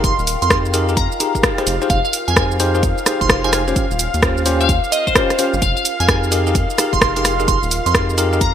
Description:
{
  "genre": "UK garage, two-step garage",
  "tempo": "129 BPM",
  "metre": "4/4",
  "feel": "swing 64% on 16ths",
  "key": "F minor",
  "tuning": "A4 = 441 Hz",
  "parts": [
    { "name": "glassy wavetable pluck", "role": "melody", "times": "0.0-8.5 s", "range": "C5 to C6", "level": "-21 LUFS", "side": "right 1 dB", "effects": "chorus, ping-pong delay" },
    { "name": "warm analog pad", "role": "sustained chords", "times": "0.0-8.5 s", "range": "F5", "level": "-26 LUFS", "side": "left 1 dB", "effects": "chorus, sidechain pumping" },
    { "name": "bell-like tine electric piano", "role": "stabs", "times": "0.0-8.4 s", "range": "Db4 to C5", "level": "-22 LUFS", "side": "left 1 dB", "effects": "fast stereo tremolo, ping-pong delay" },
    { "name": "rubbery square bass", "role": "bass", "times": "0.0-8.5 s", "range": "Eb1 to F2", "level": "-21 LUFS", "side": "equal", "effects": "none" },
    { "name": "electronic kick drum", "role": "drums", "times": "0.0-8.5 s", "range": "none", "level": "-21 LUFS", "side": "equal", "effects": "none" },
    { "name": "house drum kit", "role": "drums", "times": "0.0-8.5 s", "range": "hi-hat, rim click, shaker", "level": "-19 LUFS", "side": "equal", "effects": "none" },
    { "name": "warbly tape-like pad", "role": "texture", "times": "0.0-8.5 s", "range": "F4 to G5", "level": "-30 LUFS", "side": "right 1 dB", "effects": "chorus, built-in reverb, sidechain pumping" }
  ],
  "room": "moderate lush hall reverb, RT60 2.0 s",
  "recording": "dreamy mix soaked in reverb",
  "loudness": "-14 LUFS",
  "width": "side -9 dB against mid",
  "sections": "0.0-8.5 A section",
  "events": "none",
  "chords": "0.0 Fm11; 1.7 Bb13sus4/F; 3.8 Eb13; 5.6 Fm11",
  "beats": "| 0.04 0.50 0.97 1.44 | 1.90 2.37 2.83 3.29 | 3.76 4.22 4.69 5.16 | 5.62 6.09 6.55 7.02 | 7.48 7.95 8.41"
}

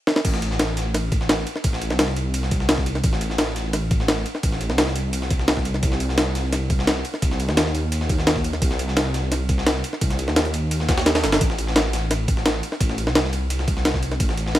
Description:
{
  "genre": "liquid drum and bass",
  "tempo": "172 BPM",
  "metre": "4/4",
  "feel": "straight",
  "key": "A minor",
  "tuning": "A4 = 440 Hz",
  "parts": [
    { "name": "breakbeat sampler-style drum kit", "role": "drums", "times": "0.1-14.6 s", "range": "crash cymbal, hi-hat, snare drum", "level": "-23 LUFS", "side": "equal", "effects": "none" },
    { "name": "dark detuned saw bass", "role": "bass", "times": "0.2-14.6 s", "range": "G1 to Eb2", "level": "-24 LUFS", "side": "equal", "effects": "none" },
    { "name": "breakbeat sampler-style drum kit", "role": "drums", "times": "0.2-14.6 s", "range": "ride cymbal, snare drum", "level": "-27 LUFS", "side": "equal", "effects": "high-pass filter on cymbals, high-pass filter on snare, high-pass filter on room" },
    { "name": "electronic kick drum", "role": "drums", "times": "0.2-14.3 s", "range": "none", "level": "-22 LUFS", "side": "equal", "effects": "none" }
  ],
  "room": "little or no reverb",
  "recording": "none",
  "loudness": "-19 LUFS",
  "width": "side -14 dB against mid",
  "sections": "0.2-14.6 A section",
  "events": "stop 0.0; drum fill 0.1, 11.1; drop 0.2-14.6; kick drops out 11.1-11.4",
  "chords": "none",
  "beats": "| 0.25 0.59 0.94 1.29 | 1.64 1.99 2.34 2.69 | 3.04 3.39 3.73 4.08 | 4.43 4.78 5.13 5.48 | 5.83 6.18 6.53 6.87 | 7.22 7.57 7.92 8.27 | 8.62 8.97 9.32 9.66 | 10.01 10.36 10.71 11.06 | 11.41 11.76 12.11 12.46 | 12.80 13.15 13.50 13.85 | 14.20 14.55"
}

